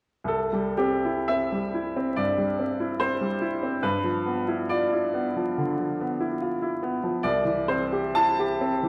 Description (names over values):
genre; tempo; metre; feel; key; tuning
classical, romantic character piece for solo piano; 57-73 BPM; 4/4; rubato; C major; A4 = 443 Hz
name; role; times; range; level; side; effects
bright baby grand piano; solo; 0.2-8.9 s; C2 to A5; -26 LUFS; equal; none
room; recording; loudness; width
wet recital hall reverb, RT60 1.5 s; vinyl crackle; -26 LUFS; mono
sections
0.3-8.9 A section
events
none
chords
0.3 C; 3.8 G6; 7.2 C